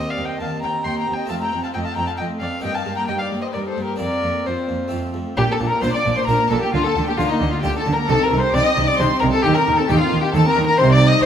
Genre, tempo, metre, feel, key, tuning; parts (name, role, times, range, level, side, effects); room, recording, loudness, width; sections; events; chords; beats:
classical, baroque-style concerto movement with solo episodes; 133 BPM; 3/4; straight; Bb major; A4 = 440 Hz
dark violin; melody; 0.0-11.3 s; Eb4 to C6; -22 LUFS; left 1 dB
rich chamber violin section; melody; 0.0-11.3 s; C4 to Eb6; -28 LUFS; left 3 dB
warm chamber violin section; second line; 0.0-11.3 s; Eb4 to G5; -25 LUFS; left 4 dB
dark studio viola section; accompaniment; 0.0-11.3 s; F3 to Eb4; -26 LUFS; equal
harpsichord; accompaniment; 0.0-11.2 s; Eb2 to G4; -28 LUFS; equal
rich chamber cello section; bass; 0.0-11.3 s; Eb2 to Eb3; -23 LUFS; right 2 dB
rich chamber double bass section; bass; 5.4-11.3 s; Bb1 to Eb2; -24 LUFS; right 3 dB
moderate recital hall reverb, RT60 1.4 s; -17 LUFS; side -9 dB against mid
0.0-5.4 A section; 5.4-11.3 B section
0.0 Cm7/Eb; 1.3 F; 2.6 Eb/G; 4.0 Fsus4; 4.9 F; 5.4 Bb; 6.7 Bb/D; 8.1 Cm; 9.4 Cm/Eb
0.40 0.85 | 1.30 1.74 2.19 | 2.64 3.09 3.54 | 4.00 4.46 4.92 | 5.38 5.83 6.29 | 6.74 7.19 7.64 | 8.09 8.54 8.99 | 9.44 9.89 10.34 | 10.79 11.23